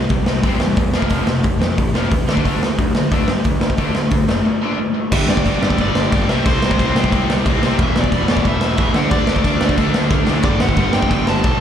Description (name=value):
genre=punk rock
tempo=180 BPM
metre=4/4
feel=straight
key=G major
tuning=A4 = 440 Hz
part: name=biting overdriven guitar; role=riff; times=0.0-11.6 s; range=E2 to D4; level=-25 LUFS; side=right 12 dB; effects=none
part: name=distorted electric guitar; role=riff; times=0.0-11.6 s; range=E2 to D4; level=-24 LUFS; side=left 12 dB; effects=distortion
part: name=fuzz picked electric bass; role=bass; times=0.1-11.6 s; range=E1 to G2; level=-21 LUFS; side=equal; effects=overdrive
part: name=raw garage drum kit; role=drums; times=0.1-11.5 s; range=crash cymbal, hi-hat, kick drum, snare drum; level=-17 LUFS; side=equal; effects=none
part: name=biting overdriven guitar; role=melody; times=5.1-11.6 s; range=C5 to A5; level=-24 LUFS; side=equal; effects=none
part: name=distorted electric guitar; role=riff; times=5.1-11.6 s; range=E2 to D4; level=-27 LUFS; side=right 1 dB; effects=none
room=small room ambience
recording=live gig heard through the venue's PA, club reverb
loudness=-14 LUFS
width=side -9 dB against mid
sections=0.0-5.1 A section; 5.1-11.6 B section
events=drum fill 10.1-10.5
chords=0.0 C; 0.9 F5; 2.3 D5; 5.1 G5; 6.3 C5; 7.8 E5; 9.0 D5; 10.5 G5